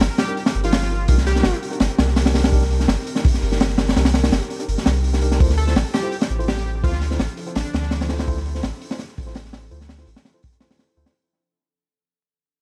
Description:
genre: drum and bass, jungle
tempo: 167 BPM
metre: 4/4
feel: straight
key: unclear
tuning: A4 = 437 Hz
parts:
  - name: ethereal airy pad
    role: sustained chords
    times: 0.0-11.1 s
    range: F3 to Bb4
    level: -36 LUFS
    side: equal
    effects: none
  - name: soft dub sub bass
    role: bass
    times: 0.0-11.1 s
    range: G1 to D2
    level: -23 LUFS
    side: equal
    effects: none
  - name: crunchy breakbeat drum kit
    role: drums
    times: 0.0-11.1 s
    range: hi-hat, kick drum, snare drum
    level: -22 LUFS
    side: equal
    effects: analog delay
  - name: plucky unison lead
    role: melody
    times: 0.2-1.5, 5.6-8.0 s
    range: D4 to A4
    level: -30 LUFS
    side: equal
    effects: analog delay
  - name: mellow tine electric piano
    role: stabs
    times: 0.3-11.1 s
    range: D4 to C5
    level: -33 LUFS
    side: equal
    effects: analog delay
room: little or no reverb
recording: echo-heavy mix, vinyl crackle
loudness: -20 LUFS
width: mono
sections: 0.0-11.1 A section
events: drop 0.0-11.1; fade-out 5.4-11.1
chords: 0.0 Cm7; 5.4 Dm7

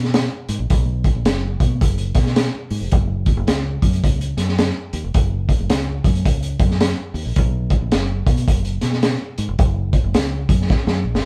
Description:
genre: uptempo 1960s-style soul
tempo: 108 BPM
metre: 4/4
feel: swing 62% on 8ths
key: F# major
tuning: A4 = 440 Hz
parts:
  - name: fingered electric bass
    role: bass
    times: 0.0-11.2 s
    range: E#1 to B2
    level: -24 LUFS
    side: equal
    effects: none
  - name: crunchy breakbeat drum kit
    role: drums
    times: 0.0-11.2 s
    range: hi-hat, kick drum, snare drum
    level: -21 LUFS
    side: equal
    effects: none
room: light reverb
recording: band playing live in one room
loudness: -19 LUFS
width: mono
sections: 0.0-11.3 A section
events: drum fill 10.7-11.3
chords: none

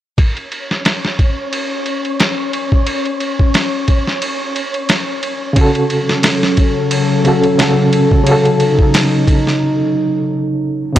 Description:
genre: trip hop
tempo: 89 BPM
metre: 4/4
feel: swing 55% on 16ths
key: unclear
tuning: A4 = 438 Hz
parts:
  - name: boom bap sampler-style drum kit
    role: drums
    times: 0.2-11.0 s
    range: kick drum, ride cymbal, snare drum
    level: -16 LUFS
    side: equal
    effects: low-pass filter on kick, low-pass filter on cymbals, low-pass filter on snare
  - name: wind-like tuned noise texture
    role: texture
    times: 0.5-11.0 s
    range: C#4 to C#5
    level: -23 LUFS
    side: left 2 dB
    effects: built-in reverb
  - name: reed electric piano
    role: accompaniment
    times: 5.5-11.0 s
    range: C#3 to A4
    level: -15 LUFS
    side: right 1 dB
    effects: tremolo, vintage 12-bit sampler grit, tape echo
  - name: warbly tape-like pad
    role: sustained chords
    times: 6.0-10.9 s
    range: C#3 to A4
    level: -15 LUFS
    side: left 1 dB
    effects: chorus, built-in reverb
room: digital ambience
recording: dry, gritty hardware recording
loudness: -12 LUFS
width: side -12 dB against mid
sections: 0.2-11.0 A section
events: break 9.6-11.0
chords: 0.2 N.C.; 5.6 F#m/C#

